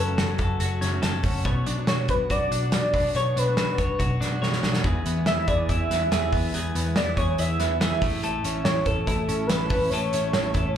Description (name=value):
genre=jangly indie pop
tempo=142 BPM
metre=4/4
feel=straight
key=unclear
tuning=A4 = 440 Hz
part: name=warm velvety synth lead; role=melody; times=0.0-10.8 s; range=A4 to E5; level=-27 LUFS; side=equal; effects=chorus, slapback echo, digital delay
part: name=picked steel-string acoustic guitar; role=accompaniment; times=0.0-10.8 s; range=A2 to C#5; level=-36 LUFS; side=right 8 dB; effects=slapback echo
part: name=twelve-string electric guitar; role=arpeggios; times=0.0-10.8 s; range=E2 to C#5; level=-29 LUFS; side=left 4 dB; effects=slapback echo
part: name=vintage muted picked electric bass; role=bass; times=0.0-10.7 s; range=F#1 to E2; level=-28 LUFS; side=equal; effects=none
part: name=loose indie drum kit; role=drums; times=0.2-10.6 s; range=hi-hat, kick drum, snare drum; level=-27 LUFS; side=right 1 dB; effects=none
room=light reverb, small room ambience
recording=live gig heard through the venue's PA, club reverb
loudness=-22 LUFS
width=side -9 dB against mid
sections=0.0-10.8 A section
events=drum fill 4.4-4.8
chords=0.0 F#m; 1.5 Bmadd9; 4.8 E; 8.0 A